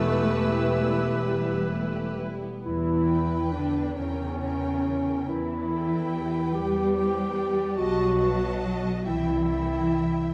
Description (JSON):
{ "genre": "classical", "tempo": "41-49 BPM (dotted quarters)", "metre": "6/8", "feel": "rubato", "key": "E minor", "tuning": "A4 = 440 Hz", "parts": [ { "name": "dark studio violin section", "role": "melody", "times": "0.0-10.3 s", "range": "G4 to E6", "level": "-43 LUFS", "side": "equal", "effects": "none" }, { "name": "bright small flute group", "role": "second line", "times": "0.0-2.2 s", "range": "E5", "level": "-42 LUFS", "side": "equal", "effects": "none" }, { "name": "clear oboe", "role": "second line", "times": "0.0-2.3 s", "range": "B4", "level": "-41 LUFS", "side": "equal", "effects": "none" }, { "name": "dark clarinet", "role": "second line", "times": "0.0-10.3 s", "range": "C#4 to G4", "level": "-30 LUFS", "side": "equal", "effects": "none" }, { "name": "rich studio violin section", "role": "second line", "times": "0.0-10.3 s", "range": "G3 to A5", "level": "-39 LUFS", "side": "equal", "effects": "none" }, { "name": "mellow bassoon", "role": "accompaniment", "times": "0.0-2.3 s", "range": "E3", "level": "-36 LUFS", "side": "equal", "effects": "none" }, { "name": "rich studio viola section", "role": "accompaniment", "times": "0.0-10.3 s", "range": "G3 to G4", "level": "-35 LUFS", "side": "equal", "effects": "none" }, { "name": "rich studio double bass section", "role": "bass", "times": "0.0-10.2 s", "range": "E1 to E2", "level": "-34 LUFS", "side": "equal", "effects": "none" }, { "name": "warm studio cello section", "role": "bass", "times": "0.0-10.3 s", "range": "E2 to G3", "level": "-33 LUFS", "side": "equal", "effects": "none" }, { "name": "mellow French horn section", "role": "sustained chords", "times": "0.8-2.6 s", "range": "G3 to E4", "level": "-38 LUFS", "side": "equal", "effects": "none" } ], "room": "wet concert hall reverb, RT60 2.1 s", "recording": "none", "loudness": "-26 LUFS", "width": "mono", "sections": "0.0-2.7 A section; 2.7-10.3 B section", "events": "none", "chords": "0.0 Em; 4.0 Edim7; 5.3 Em; 7.8 B7; 9.1 C" }